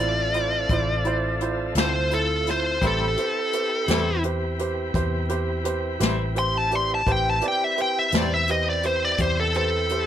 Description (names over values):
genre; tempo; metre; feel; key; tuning
slow blues; 56 BPM (dotted quarters); 12/8; straight; A minor; A4 = 438 Hz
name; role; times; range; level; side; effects
smooth overdriven lead guitar; melody; 0.0-10.1 s; A4 to C6; -23 LUFS; equal; none
warm upright piano; accompaniment; 0.0-10.1 s; E4 to D5; -29 LUFS; right 6 dB; none
tonewheel organ; sustained chords; 0.0-10.1 s; C4 to B4; -32 LUFS; left 1 dB; slow rotary speaker
vintage muted fingered electric bass; bass; 0.0-10.1 s; A1 to E2; -27 LUFS; left 1 dB; none
jazz brush drum kit; drums; 0.3-10.1 s; hi-hat, kick drum, snare drum; -28 LUFS; left 2 dB; none
twangy electric guitar; accompaniment; 1.8-8.4 s; A2 to A4; -30 LUFS; left 5 dB; tremolo
room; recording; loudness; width
little or no reverb; none; -21 LUFS; side -10 dB against mid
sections
0.0-10.1 A section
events
lead electric guitar solo 0.0-10.1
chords
0.0 Dm7; 2.8 Am7